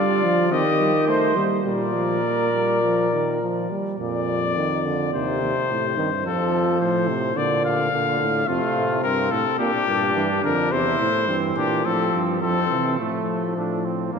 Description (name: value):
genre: classical, imitative canzona for brass ensemble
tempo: 106 BPM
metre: 4/4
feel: straight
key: Bb major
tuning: A4 = 440 Hz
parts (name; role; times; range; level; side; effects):
- clear trumpet; melody; 0.0-13.0 s; F4 to F5; -24 LUFS; left 5 dB; none
- mellow trumpet; second line; 0.0-3.7, 8.5-14.2 s; A3 to C5; -27 LUFS; right 4 dB; none
- warm trombone; accompaniment; 0.0-14.2 s; Bb2 to D4; -26 LUFS; right 2 dB; none
- dark euphonium; bass; 0.0-14.2 s; Eb2 to G3; -25 LUFS; right 1 dB; none
room: wet church reverb, RT60 3.5 s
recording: none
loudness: -19 LUFS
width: side -6 dB against mid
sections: 0.0-4.0 A section; 4.0-13.0 B section; 13.0-14.2 A section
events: none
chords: 0.0 Dm; 0.5 Cm/Eb; 1.1 Eb6; 1.7 Bb; 4.0 Bb/F; 5.1 Cm/Eb; 6.3 F; 7.4 Bb; 8.5 F; 9.6 Gm; 10.7 C/E; 11.9 F; 13.0 F/A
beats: 0.52 1.08 | 1.66 2.25 2.83 3.42 | 4.00 4.57 5.13 5.70 | 6.25 6.81 7.37 7.92 | 8.48 9.04 9.59 10.16 | 10.72 11.28 11.85 12.42 | 12.99 13.57 14.14